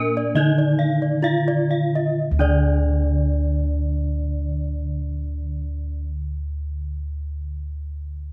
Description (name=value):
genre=Balinese gamelan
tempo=59-74 BPM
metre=4/4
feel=straight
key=unclear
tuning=A4 = 440 Hz
part: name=gamelan-type bronze metallophone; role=melody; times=0.0-6.0 s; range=D4 to F4-30c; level=-30 LUFS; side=equal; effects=none
part: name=gamelan-type bronze metallophone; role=accompaniment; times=0.0-6.0 s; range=D3 to Bb3-20c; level=-34 LUFS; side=equal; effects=none
part: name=gamelan-type bronze metallophone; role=arpeggios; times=0.0-6.0 s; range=Bb4-20c to F5-30c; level=-31 LUFS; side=equal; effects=none
part: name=gamelan-type bossed gongs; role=bass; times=0.0-6.0 s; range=D2 to Bb4-20c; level=-24 LUFS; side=equal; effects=none
part: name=gamelan-type bronze metallophone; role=arpeggios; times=0.2-6.1 s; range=D5 to Eb5+20c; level=-32 LUFS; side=equal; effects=none
room=light reverb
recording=close, detailed microphones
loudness=-23 LUFS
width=mono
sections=0.0-2.2 A section; 2.2-6.2 B section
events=slowing down 0.0-2.2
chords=none